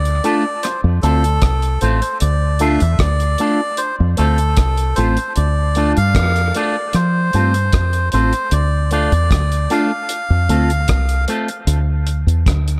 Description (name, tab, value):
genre	dub reggae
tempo	76 BPM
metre	4/4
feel	straight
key	D minor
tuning	A4 = 439 Hz
part	melodica	melody	0.0-11.2 s	A4 to F5	-23 LUFS	equal	dub echo
part	deep dub fingered electric bass	bass	0.0-12.8 s	A1 to F3	-18 LUFS	equal	none
part	deep reggae drum kit	drums	0.1-12.8 s	hi-hat, kick drum, rim click	-23 LUFS	equal	none
part	electric guitar with an envelope filter	accompaniment	0.2-11.5 s	A3 to A4	-24 LUFS	equal	phaser, dub echo
room	light reverb, studio ambience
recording	none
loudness	-17 LUFS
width	mono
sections	0.0-12.8 A section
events	none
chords	0.0 Dm; 0.6 F; 2.2 Dm; 3.8 F; 5.4 Dm; 6.9 F; 8.5 Dm; 10.1 F; 11.7 Dsus2